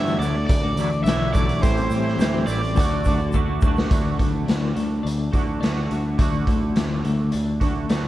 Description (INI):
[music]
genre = indie rock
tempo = 105 BPM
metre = 4/4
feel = straight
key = unclear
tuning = A4 = 440 Hz
[part]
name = crunchy overdriven guitar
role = melody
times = 0.0-3.3 s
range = C5 to E5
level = -27 LUFS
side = equal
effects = none
[part]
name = tine electric piano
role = second line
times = 0.0-3.6 s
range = F#4 to A4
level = -38 LUFS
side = right 7 dB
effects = none
[part]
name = twangy electric guitar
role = riff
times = 0.0-8.1 s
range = A2 to F#4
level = -29 LUFS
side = right 6 dB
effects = analog chorus
[part]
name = twelve-string electric guitar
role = riff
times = 0.0-8.1 s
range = A2 to G4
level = -27 LUFS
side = left 6 dB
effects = tremolo
[part]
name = overdriven picked electric bass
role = bass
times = 0.0-8.1 s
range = A1 to A2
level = -25 LUFS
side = equal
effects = none
[part]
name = raw garage drum kit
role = drums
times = 0.1-8.0 s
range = hi-hat, kick drum, snare drum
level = -23 LUFS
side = equal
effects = none
[part]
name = egg shaker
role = percussion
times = 0.2-3.8 s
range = none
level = -48 LUFS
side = right 8 dB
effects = none
[sound]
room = light reverb, studio reverb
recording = dark, warm production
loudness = -19 LUFS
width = side -14 dB against mid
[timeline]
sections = 0.0-3.9 A section; 3.9-8.1 B section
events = drum fill 3.3-3.9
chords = 0.0 Dadd9; 1.6 Am7; 2.8 D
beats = 0.49 1.06 | 1.63 2.20 2.77 3.34 | 3.90 4.47 5.04 5.61 | 6.18 6.75 7.32 7.89